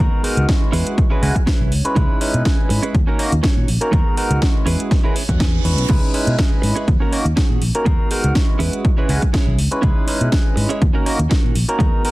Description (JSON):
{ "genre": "filtered disco house", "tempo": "122 BPM", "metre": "4/4", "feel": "swing 54% on 16ths", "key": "C# dorian", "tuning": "A4 = 440 Hz", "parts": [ { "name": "barky tine electric piano", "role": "accompaniment", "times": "0.0-12.1 s", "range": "G#3 to D#5", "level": "-23 LUFS", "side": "equal", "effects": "phaser, vintage 12-bit sampler grit, sidechain pumping" }, { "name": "direct-recorded clean electric guitar", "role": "riff", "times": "0.0-12.1 s", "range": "B3 to G#5", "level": "-27 LUFS", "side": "right 6 dB", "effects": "sidechain pumping" }, { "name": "fingered electric bass", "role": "bass", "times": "0.0-11.9 s", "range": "A#1 to B2", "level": "-19 LUFS", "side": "equal", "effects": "tube saturation, sidechain pumping" }, { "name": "house drum kit", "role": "drums", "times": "0.0-12.1 s", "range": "crash cymbal, hi-hat, snare drum", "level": "-25 LUFS", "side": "equal", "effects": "overdrive, sidechain pumping on hats, sidechain pumping on cymbals" }, { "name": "electronic kick drum", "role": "drums", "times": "0.5-11.9 s", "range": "none", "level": "-17 LUFS", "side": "equal", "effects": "overdrive" }, { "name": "reverse cymbal", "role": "sound effects", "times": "5.1-5.9 s", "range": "none", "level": "-29 LUFS", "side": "right 6 dB", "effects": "none" } ], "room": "little or no reverb", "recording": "dense, heavily limited modern master", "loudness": "-15 LUFS", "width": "side -19 dB against mid", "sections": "0.0-12.1 A section", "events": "clean electric guitar fill 1.2-2.0, 4.9-5.9; reverse cymbal 5.1-5.9", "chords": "0.0 G#m9; 0.7 E6; 2.0 C#m7; 2.9 D#m7; 3.9 G#m9; 4.7 E6; 5.9 C#m7; 6.9 D#m7; 7.9 G#m9; 8.6 E6; 9.8 C#m7; 10.8 D#m7", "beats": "0.49 0.98 1.47 | 1.96 2.45 2.95 3.44 | 3.93 4.42 4.91 5.41 | 5.90 6.39 6.88 7.37 | 7.86 8.36 8.85 9.34 | 9.83 10.32 10.81 11.31 | 11.80" }